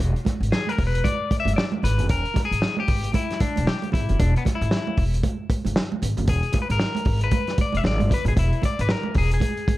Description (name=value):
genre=funk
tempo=115 BPM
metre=4/4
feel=swing 60% on 16ths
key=E mixolydian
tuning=A4 = 440 Hz
part: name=upright bass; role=bass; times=0.0-9.7 s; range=E1 to G#1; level=-23 LUFS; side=equal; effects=none
part: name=vintage drum kit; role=drums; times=0.0-9.8 s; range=hi-hat, kick drum, snare drum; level=-24 LUFS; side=equal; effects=none
part: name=congas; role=percussion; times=0.0-9.8 s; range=none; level=-31 LUFS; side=right 6 dB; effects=none
part: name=electric guitar at the edge of break-up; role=accompaniment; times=0.5-9.8 s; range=B3 to E5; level=-27 LUFS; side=left 4 dB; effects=spring reverb
room=small room reverb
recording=dark, warm production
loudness=-20 LUFS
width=side -17 dB against mid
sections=0.0-9.8 A section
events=clean electric guitar solo 0.0-9.8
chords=0.0 E7